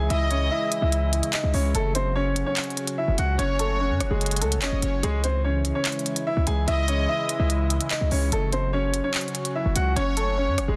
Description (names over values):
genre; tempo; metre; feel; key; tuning
hip hop, drill; 146 BPM; 4/4; half-time; C# minor; A4 = 440 Hz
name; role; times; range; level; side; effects
clear grand piano; melody; 0.0-10.8 s; G#3 to G#5; -29 LUFS; equal; tape echo
sweeping resonant pad; sustained chords; 0.0-10.8 s; C#3 to F#4; -35 LUFS; equal; lush chorus
hard-hitting 808-style bass; bass; 0.0-10.8 s; F#1 to F#2; -27 LUFS; equal; none
warm studio violin section; second line; 0.1-0.9, 3.4-7.5, 10.0-10.7 s; C#5 to D#5; -34 LUFS; equal; tape echo
drill drum kit; drums; 0.1-10.7 s; handclaps, hi-hat, rim click; -31 LUFS; equal; none
room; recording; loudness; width
light reverb; dense, heavily limited modern master; -24 LUFS; mono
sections
0.0-10.8 A section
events
none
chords
0.0 C#m; 1.7 F#m; 5.0 C#m; 8.3 F#m